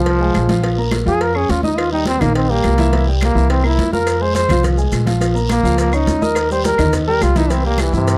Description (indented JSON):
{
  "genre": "latin, salsa",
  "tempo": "210 BPM",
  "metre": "4/4",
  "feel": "straight",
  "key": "F minor",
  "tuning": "A4 = 440 Hz",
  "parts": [
    { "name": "bright trombone", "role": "melody", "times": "0.0-8.2 s", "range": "C3 to C5", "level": "-20 LUFS", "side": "equal", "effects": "none" },
    { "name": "dark concert grand piano", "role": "accompaniment", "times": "0.0-8.2 s", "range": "Eb3 to F6", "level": "-23 LUFS", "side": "equal", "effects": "none" },
    { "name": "upright bass", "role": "bass", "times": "0.0-8.2 s", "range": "Bb1 to G2", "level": "-20 LUFS", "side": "equal", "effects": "none" },
    { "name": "congas", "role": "percussion", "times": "0.1-8.2 s", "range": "none", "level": "-27 LUFS", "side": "equal", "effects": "none" },
    { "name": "cowbell", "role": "percussion", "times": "0.1-8.2 s", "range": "none", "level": "-31 LUFS", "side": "equal", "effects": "none" },
    { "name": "guiro", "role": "percussion", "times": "0.1-8.2 s", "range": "none", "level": "-35 LUFS", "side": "equal", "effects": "none" },
    { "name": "claves", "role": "percussion", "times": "0.3-7.9 s", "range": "none", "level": "-33 LUFS", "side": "equal", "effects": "none" },
    { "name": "maracas", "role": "percussion", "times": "4.1-8.2 s", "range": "none", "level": "-37 LUFS", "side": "equal", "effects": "none" }
  ],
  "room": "light reverb",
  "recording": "dry, close 1970s-style studio recording",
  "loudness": "-16 LUFS",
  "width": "mono",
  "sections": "0.0-8.2 A section",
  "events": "trombone solo 0.0-8.2",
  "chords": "0.0 Fm; 0.6 Bbm; 1.8 Eb; 2.9 C7; 4.1 Fm; 5.2 Bbm; 6.4 Eb; 7.5 C7",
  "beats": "0.07 0.35 | 0.64 0.93 1.21 1.50 | 1.79 2.07 2.36 2.64 | 2.93 3.22 3.50 3.79 | 4.07 4.36 4.64 4.93 | 5.22 5.50 5.79 6.07 | 6.36 6.64 6.93 7.21 | 7.50 7.78 8.07"
}